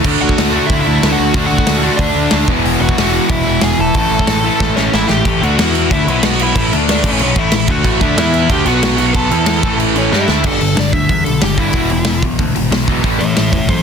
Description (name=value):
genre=punk rock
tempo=185 BPM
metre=4/4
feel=straight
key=A major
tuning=A4 = 440 Hz
part: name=crunchy overdriven guitar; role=riff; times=0.0-5.3, 7.8-13.8 s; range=E2 to G4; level=-20 LUFS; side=right 14 dB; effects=none
part: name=distorted electric guitar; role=riff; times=0.0-13.8 s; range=E2 to G4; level=-19 LUFS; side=left 16 dB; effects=overdrive
part: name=fuzz guitar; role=riff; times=0.0-13.8 s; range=G2 to G4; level=-21 LUFS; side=equal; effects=distortion
part: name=growling picked electric bass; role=bass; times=0.0-13.8 s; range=E1 to G2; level=-19 LUFS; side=equal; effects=overdrive
part: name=big rock drum kit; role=drums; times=0.0-13.8 s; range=crash cymbal, hi-hat, kick drum, snare drum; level=-17 LUFS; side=equal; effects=none
part: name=bluesy overdriven lead guitar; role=melody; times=0.2-13.8 s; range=C#4 to A5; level=-18 LUFS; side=equal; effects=distortion
room=little or no reverb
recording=dense, heavily limited modern master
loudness=-11 LUFS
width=side -6 dB against mid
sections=0.0-5.3 A section; 5.3-10.5 B section; 10.5-13.8 C section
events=drum fill 4.6-5.3, 10.1-10.5; lead electric guitar solo 10.5-13.8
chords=0.1 D; 2.5 E; 4.0 A; 5.3 A5; 5.6 E5; 5.9 A5; 6.1 B5; 6.6 A5; 6.7 D5; 7.0 A; 8.2 E5; 8.5 Dsus4; 8.7 B5; 9.3 E5; 9.6 A; 10.5 G; 11.8 E; 13.1 A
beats=| 0.06 0.38 0.71 1.03 | 1.36 1.68 2.01 2.33 | 2.66 2.98 3.31 3.64 | 3.96 4.29 4.61 4.94 | 5.26 5.58 5.91 6.24 | 6.56 6.88 7.21 7.53 | 7.86 8.18 8.51 8.83 | 9.15 9.48 9.80 10.13 | 10.45 10.78 11.10 11.43 | 11.75 12.08 12.40 12.73 | 13.05 13.38 13.70